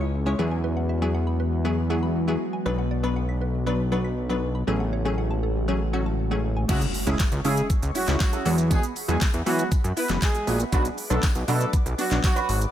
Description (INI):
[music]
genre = dance-pop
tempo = 119 BPM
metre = 4/4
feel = straight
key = unclear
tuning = A4 = 441 Hz
[part]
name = wavetable chord stab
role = accompaniment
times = 0.0-12.4 s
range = E3 to C#5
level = -29 LUFS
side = left 2 dB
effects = sidechain pumping
[part]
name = glassy FM pad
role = sustained chords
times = 0.0-12.7 s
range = C#3 to D6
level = -33 LUFS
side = left 2 dB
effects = ensemble chorus, built-in reverb, phaser, sidechain pumping
[part]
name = mallet-like synth pluck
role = arpeggios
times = 0.0-6.7 s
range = A4 to C#7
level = -37 LUFS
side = right 2 dB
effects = chorus, sidechain pumping, ping-pong delay
[part]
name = fat analog bass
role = bass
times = 0.0-12.7 s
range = F#1 to E3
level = -25 LUFS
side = equal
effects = sidechain pumping
[part]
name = warm horn section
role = melody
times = 6.7-12.6 s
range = F#3 to B4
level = -30 LUFS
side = right 1 dB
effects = ping-pong delay
[part]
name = electric guitar with an envelope filter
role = riff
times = 6.7-12.7 s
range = B3 to B4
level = -32 LUFS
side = right 6 dB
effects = analog chorus
[part]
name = pop drum kit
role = drums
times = 6.7-12.7 s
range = crash cymbal, handclaps, hi-hat, kick drum, shaker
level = -24 LUFS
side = equal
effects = none
[part]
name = tambourine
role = percussion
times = 6.7-12.6 s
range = none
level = -42 LUFS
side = left 12 dB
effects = none
[part]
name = impact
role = sound effects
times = 6.7-8.7 s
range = none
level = -36 LUFS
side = equal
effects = none
[sound]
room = little or no reverb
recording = none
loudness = -22 LUFS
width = side -11 dB against mid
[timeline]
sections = 0.0-6.7 A section; 6.7-12.7 B section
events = drop 6.7-12.7; impact 6.7-8.7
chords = 0.4 Eadd9; 2.7 Bm; 4.7 F#madd9/A; 6.7 C#m; 8.5 Eadd9; 10.7 Bm